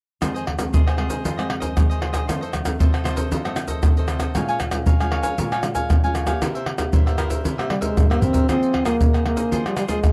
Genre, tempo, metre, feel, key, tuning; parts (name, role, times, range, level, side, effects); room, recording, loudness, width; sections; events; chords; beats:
samba and choro; 116 BPM; 4/4; straight; F minor; A4 = 440 Hz
cavaquinho; accompaniment; 0.2-10.0 s; E4 to Ab5; -32 LUFS; equal
nylon-string guitar; accompaniment; 0.2-10.1 s; F2 to Ab4; -31 LUFS; equal
egg shaker, surdo, pandeiro and tamborim; percussion; 0.2-10.1 s; -22 LUFS; equal
mellow trombone; melody; 7.7-10.1 s; G3 to C4; -24 LUFS; equal
small room reverb; dry, close 1970s-style studio recording; -21 LUFS; mono
0.2-8.5 A section; 8.5-10.1 B section
drum fill 8.0-8.5
0.2 Fm7; 2.3 F7; 4.4 Bbm7; 6.4 C7; 8.5 Fm7
| 0.22 0.73 1.25 1.77 | 2.29 2.80 3.32 3.84 | 4.36 4.87 5.39 5.91 | 6.42 6.94 7.46 7.97 | 8.49 9.00 9.52 10.04